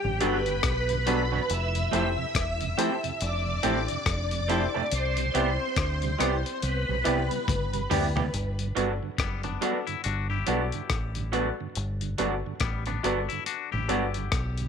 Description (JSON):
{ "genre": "lovers rock reggae", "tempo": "70 BPM", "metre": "4/4", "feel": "swing 60% on 16ths", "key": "G major", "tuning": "A4 = 440 Hz", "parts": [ { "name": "string machine, full ensemble", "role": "second line", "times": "0.0-8.3 s", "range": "G4 to E6", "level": "-30 LUFS", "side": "equal", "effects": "phaser, ensemble chorus" }, { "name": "mellow tonewheel organ", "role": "accompaniment", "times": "0.0-14.7 s", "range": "F2 to F#4", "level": "-36 LUFS", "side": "right 10 dB", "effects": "slow rotary speaker, slapback echo" }, { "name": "deep dub fingered electric bass", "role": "bass", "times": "0.0-14.7 s", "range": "E1 to D2", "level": "-30 LUFS", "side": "equal", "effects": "none" }, { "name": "warm concert grand piano", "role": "accompaniment", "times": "0.2-14.0 s", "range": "D4 to D5", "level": "-33 LUFS", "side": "left 11 dB", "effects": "none" }, { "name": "electric guitar through a small old amp", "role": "stabs", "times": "0.2-14.0 s", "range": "F#3 to A4", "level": "-32 LUFS", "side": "right 11 dB", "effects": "wide subtle chorus" }, { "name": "dusty soul sampler-style drum kit", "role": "drums", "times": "0.2-14.7 s", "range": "hi-hat, kick drum, rim click, toms", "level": "-30 LUFS", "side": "left 3 dB", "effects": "none" }, { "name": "twangy electric guitar", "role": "arpeggios", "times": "9.2-14.7 s", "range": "G3 to G4", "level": "-34 LUFS", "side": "left 12 dB", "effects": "none" } ], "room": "light reverb, digital ambience", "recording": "1960s-style stereo with parts hard left and right", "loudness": "-25 LUFS", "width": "side -7 dB against mid", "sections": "0.0-8.3 A section; 8.3-14.7 B section", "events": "drum fill 7.5-8.3", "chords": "0.0 Gmaj7; 1.5 Fmaj7; 4.9 Cmaj7; 8.3 Gmaj7" }